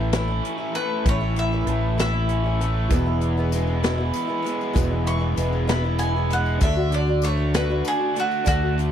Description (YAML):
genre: folk rock and heartland rock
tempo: 65 BPM (dotted quarters)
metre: 6/8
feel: straight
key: E mixolydian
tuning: A4 = 441 Hz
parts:
  - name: bowl-back mandolin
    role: melody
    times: 0.0-8.8 s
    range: F#4 to C#6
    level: -27 LUFS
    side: equal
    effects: none
  - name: picked twelve-string acoustic guitar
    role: accompaniment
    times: 0.0-8.9 s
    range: E2 to F#4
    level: -29 LUFS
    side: left 2 dB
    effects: none
  - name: raw garage guitar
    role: riff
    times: 0.0-8.9 s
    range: E2 to F#4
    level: -27 LUFS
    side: right 1 dB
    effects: overdrive
  - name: fingered electric bass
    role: bass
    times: 0.0-8.9 s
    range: E1 to D2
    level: -23 LUFS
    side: equal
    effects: none
  - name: natural country drum kit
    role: drums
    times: 0.1-8.9 s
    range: hi-hat, kick drum, snare drum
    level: -24 LUFS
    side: equal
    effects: none
  - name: clear concert grand piano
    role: accompaniment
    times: 2.9-8.9 s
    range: A3 to B4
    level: -36 LUFS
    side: right 12 dB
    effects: none
  - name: tambourine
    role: percussion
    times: 2.9-8.9 s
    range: none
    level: -42 LUFS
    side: left 17 dB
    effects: none
room: little or no reverb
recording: dry, close 1970s-style studio recording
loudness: -20 LUFS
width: side -9 dB against mid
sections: 0.0-8.9 A section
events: mandolin solo 0.0-8.9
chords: 0.0 A; 2.9 E; 6.6 D